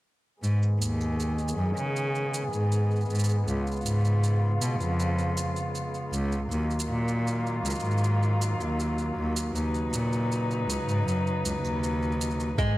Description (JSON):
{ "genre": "folktronica", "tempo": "79 BPM", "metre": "4/4", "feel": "straight", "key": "G# dorian", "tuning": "A4 = 439 Hz", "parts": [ { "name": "muted string quartet", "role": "sustained chords", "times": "0.4-12.8 s", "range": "C#3 to B4", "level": "-31 LUFS", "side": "equal", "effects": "low-pass filter" }, { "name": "warm cello", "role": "bass", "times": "0.4-12.7 s", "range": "C#2 to C#3", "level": "-26 LUFS", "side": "equal", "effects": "none" }, { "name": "shaker", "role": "drums", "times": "0.4-12.7 s", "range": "none", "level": "-38 LUFS", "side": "right 3 dB", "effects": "overdrive, studio reverb" }, { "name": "picked old ladder-braced acoustic guitar", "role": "arpeggios", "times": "12.6-12.8 s", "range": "G#3", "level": "-27 LUFS", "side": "right 1 dB", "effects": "none" }, { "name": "electronic kick drum", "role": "drums", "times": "12.6-12.7 s", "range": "none", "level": "-27 LUFS", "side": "equal", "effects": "overdrive, studio reverb" } ], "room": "light reverb, small room ambience", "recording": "none", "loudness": "-25 LUFS", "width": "side -17 dB against mid", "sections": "0.4-12.8 A section", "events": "filter sweep on cello 0.4-12.8; filter sweep on string quartet 0.4-12.8", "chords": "0.4 G#m; 3.5 C#7; 6.5 D#madd9; 9.5 Badd9" }